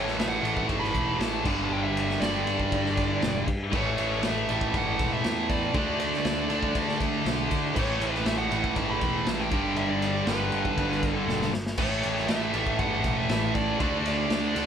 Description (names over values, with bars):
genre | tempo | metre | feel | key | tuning
hard rock | 119 BPM | 4/4 | straight | unclear | A4 = 440 Hz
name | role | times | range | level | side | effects
dark smooth lead guitar | melody | 0.0-14.7 s | B4 to B5 | -32 LUFS | right 2 dB | overdrive
overdriven electric guitar | riff | 0.0-14.7 s | G2 to D4 | -30 LUFS | right 7 dB | none
scooped high-gain guitar | riff | 0.0-14.7 s | G2 to D4 | -30 LUFS | left 9 dB | distortion
modern bright picked electric bass | bass | 0.0-14.7 s | E1 to D3 | -33 LUFS | equal | none
raw garage drum kit | drums | 0.1-14.7 s | crash cymbal, kick drum, ride cymbal, snare drum | -30 LUFS | left 1 dB | none
room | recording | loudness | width
moderate studio reverb, RT60 0.5 s | band playing live in one room | -24 LUFS | side -8 dB against mid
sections
0.0-11.8 A section; 11.8-14.7 A section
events
drum fill 11.3-11.8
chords
0.0 A5; 1.5 G5; 3.7 A; 5.8 D5; 7.8 A; 9.5 G; 11.8 A; 13.8 D5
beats
0.19 0.69 1.20 | 1.71 2.22 2.72 3.23 | 3.73 4.24 4.74 5.25 | 5.75 6.25 6.76 7.26 | 7.76 8.27 8.77 9.27 | 9.77 10.28 10.78 11.28 | 11.79 12.29 12.79 13.30 | 13.80 14.31